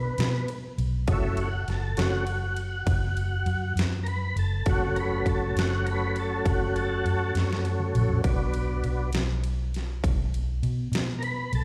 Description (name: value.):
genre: slow blues.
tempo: 67 BPM (dotted quarters).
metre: 12/8.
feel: straight.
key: F# minor.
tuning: A4 = 440 Hz.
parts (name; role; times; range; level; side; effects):
tonewheel organ; sustained chords; 0.0-11.6 s; F#3 to B4; -32 LUFS; equal; slow rotary speaker, chorus vibrato.
vintage muted fingered electric bass; bass; 0.0-11.6 s; F#1 to B2; -30 LUFS; equal; none.
dubstep drum kit; drums; 0.2-11.6 s; kick drum, ride cymbal, snare drum, toms; -32 LUFS; equal; overdrive.
room: little or no reverb.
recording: live gig heard through the venue's PA, recital hall reverb.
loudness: -27 LUFS.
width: mono.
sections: 0.0-11.6 A section.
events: tonewheel organ solo 0.0-11.6; drum fill 7.4-8.2.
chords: 0.0 N.C.; 1.1 F#m; 8.2 Bm.